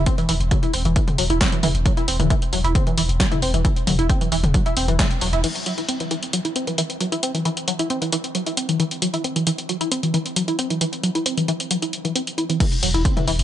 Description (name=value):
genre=driving peak-time techno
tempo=134 BPM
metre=4/4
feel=straight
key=unclear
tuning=A4 = 438 Hz
part: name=tight sequenced synth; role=riff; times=0.0-13.3 s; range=E3 to E4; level=-23 LUFS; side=equal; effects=chorus, tube saturation, sidechain pumping, digital delay
part: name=saturated sub bass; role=bass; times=0.0-5.4, 12.8-13.4 s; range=E1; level=-22 LUFS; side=equal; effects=tube saturation, sidechain pumping, low-pass filter
part: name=electronic kick drum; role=drums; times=0.1-5.1, 12.6-13.1 s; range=none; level=-20 LUFS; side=equal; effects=overdrive
part: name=punchy analog drum machine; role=drums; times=0.1-13.4 s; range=crash cymbal, hi-hat, snare drum, toms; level=-24 LUFS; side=left 1 dB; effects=sidechain pumping on hats, sidechain pumping on toms, sidechain pumping on cymbals
room=little or no reverb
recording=nothing above 10.4 kHz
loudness=-18 LUFS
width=side -12 dB against mid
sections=0.0-5.4 A section; 5.4-12.6 B section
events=drop 0.0-5.4; band accent 5.0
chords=none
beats=| 0.07 0.51 0.96 1.41 | 1.86 2.31 2.75 3.20 | 3.65 4.10 4.54 4.99 | 5.44 5.89 6.33 6.78 | 7.23 7.68 8.13 8.57 | 9.02 9.47 9.92 10.36 | 10.81 11.26 11.71 12.15 | 12.60 13.05